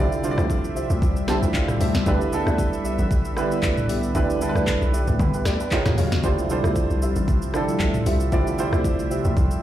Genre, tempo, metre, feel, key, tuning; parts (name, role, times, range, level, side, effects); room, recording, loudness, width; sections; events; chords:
amapiano; 115 BPM; 4/4; swing 55% on 16ths; D dorian; A4 = 440 Hz
warm concert grand piano; accompaniment; 0.0-9.6 s; D3 to A5; -25 LUFS; right 3 dB
warm analog pad; sustained chords; 0.0-9.6 s; C3 to F5; -29 LUFS; left 2 dB; chorus, sidechain pumping
deep mellow chord stab; stabs; 0.0-9.3 s; F4 to F5; -32 LUFS; left 2 dB; chorus, tape echo
hollow log drum bass; bass; 0.0-9.6 s; A1 to D3; -24 LUFS; equal
afro-pop drum kit; drums; 0.1-9.6 s; handclaps, hi-hat, kick drum, rim click, shaker, snare drum, toms; -25 LUFS; equal
light reverb; played on a big sound system in a bare room, large studio reverb; -19 LUFS; side -12 dB against mid
0.0-9.6 A section
grand piano fill 1.0-2.1
0.0 Dm11; 2.1 Em7; 5.7 Ebm11; 6.2 Dm11